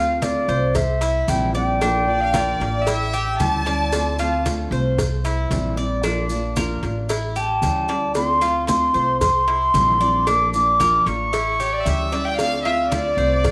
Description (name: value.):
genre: latin, Cuban son and guajira.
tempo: 113 BPM.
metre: 4/4.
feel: straight.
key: D minor.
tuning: A4 = 436 Hz.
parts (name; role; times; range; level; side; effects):
mellow concert flute; melody; 0.0-3.1, 7.4-12.1 s; D5 to D6; -22 LUFS; equal; none.
nylon-string guitar; accompaniment; 0.0-13.5 s; C3 to F4; -30 LUFS; equal; none.
Cuban tres; arpeggios; 0.0-13.5 s; D4 to D5; -28 LUFS; equal; none.
upright bass; bass; 0.0-13.5 s; A1 to D2; -28 LUFS; equal; none.
congas; percussion; 0.2-13.5 s; none; -30 LUFS; equal; none.
cowbell; percussion; 0.2-13.5 s; none; -33 LUFS; equal; none.
maracas; percussion; 0.2-13.5 s; none; -39 LUFS; equal; none.
clear chamber violin section; second line; 2.1-4.4, 11.6-13.5 s; C#5 to A5; -26 LUFS; equal; none.
room: moderate plate reverb, RT60 2.6 s.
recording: none.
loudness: -20 LUFS.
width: mono.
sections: 0.0-13.5 A section.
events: none.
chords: 0.0 Dm7; 0.8 C; 1.8 Bb; 2.9 A7; 3.9 Dm7; 5.0 C; 6.0 Bb; 7.1 A7; 8.2 Dm7; 9.2 C; 10.3 Bb; 11.3 A7; 12.4 Dm7.